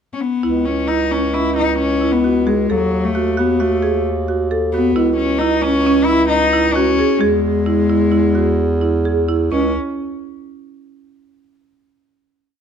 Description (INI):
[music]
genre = contemporary instrumental, chamber music in an uneven meter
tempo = 132 BPM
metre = 5/4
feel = straight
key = C# minor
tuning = A4 = 441 Hz
[part]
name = warm cello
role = melody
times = 0.1-9.7 s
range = F#3 to E4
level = -18 LUFS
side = left 6 dB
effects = none
[part]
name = marimba with medium hard mallets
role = arpeggios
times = 0.4-9.7 s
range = C#4 to A4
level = -19 LUFS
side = right 6 dB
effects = none
[part]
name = warm bass clarinet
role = bass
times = 0.4-9.7 s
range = C#2 to E2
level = -20 LUFS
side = equal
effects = none
[sound]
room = light reverb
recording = dark, warm production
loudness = -14 LUFS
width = side -7 dB against mid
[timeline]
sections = 0.0-0.4 pickup bar; 0.4-9.5 A section; 9.5-11.8 final note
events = none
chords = 0.4 C#m; 2.7 D#dim; 4.9 C#m; 7.2 E; 9.5 N.C.